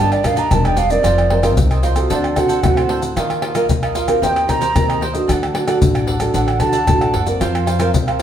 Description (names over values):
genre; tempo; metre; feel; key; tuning
samba and choro; 113 BPM; 4/4; straight; unclear; A4 = 440 Hz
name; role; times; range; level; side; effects
wooden flute; melody; 0.0-7.1 s; D5 to Bb5; -19 LUFS; right 3 dB; none
cavaquinho; accompaniment; 0.0-8.2 s; D4 to F#5; -23 LUFS; right 5 dB; none
nylon-string guitar; accompaniment; 0.0-8.2 s; A2 to Bb4; -20 LUFS; equal; none
upright bass; bass; 0.0-8.2 s; E1 to F2; -21 LUFS; equal; none
maracas, pandeiro, tamborim and surdo; percussion; 0.1-8.2 s; none; -19 LUFS; left 2 dB; none
room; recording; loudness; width
wet studio reverb, RT60 0.8 s; band playing live in one room; -14 LUFS; side -10 dB against mid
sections
0.0-8.2 A section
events
flute solo 0.0-8.2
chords
0.0 Ebmaj7/G; 1.0 F7sus4; 2.1 D7; 3.2 Ebsus2; 4.2 Cm7/Eb; 5.3 D; 7.4 Fsus4